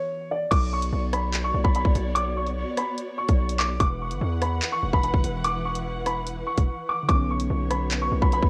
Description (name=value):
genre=hip hop, drill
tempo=146 BPM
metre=4/4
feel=half-time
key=B minor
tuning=A4 = 440 Hz
part: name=dark grand piano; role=melody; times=0.0-8.5 s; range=C#5 to D6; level=-30 LUFS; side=equal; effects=cassette tape
part: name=tine electric piano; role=accompaniment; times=0.0-0.5, 7.0-8.5 s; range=D3 to F#4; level=-35 LUFS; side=equal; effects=cassette tape
part: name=dark symphonic string section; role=sustained chords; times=0.5-8.5 s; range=E3 to F#5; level=-36 LUFS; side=equal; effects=cassette tape
part: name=distorted 808-style bass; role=bass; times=0.5-8.5 s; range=E1 to E2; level=-30 LUFS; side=equal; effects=distortion
part: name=drill drum kit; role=drums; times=0.5-8.5 s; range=crash cymbal, handclaps, hi-hat, kick drum, rim click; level=-26 LUFS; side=equal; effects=cassette tape
room=digital ambience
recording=home recording on cassette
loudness=-25 LUFS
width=mono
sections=0.5-8.5 A section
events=stop 0.0-0.5; break 6.7-7.1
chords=0.0 Esus2; 0.5 Bmadd9; 3.8 Esus2; 7.1 Bmadd9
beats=0.10 | 0.51 0.92 1.33 1.75 | 2.16 2.57 2.98 3.39 | 3.80 4.21 4.62 5.03 | 5.45 5.86 6.27 6.68 | 7.09 7.50 7.91 8.32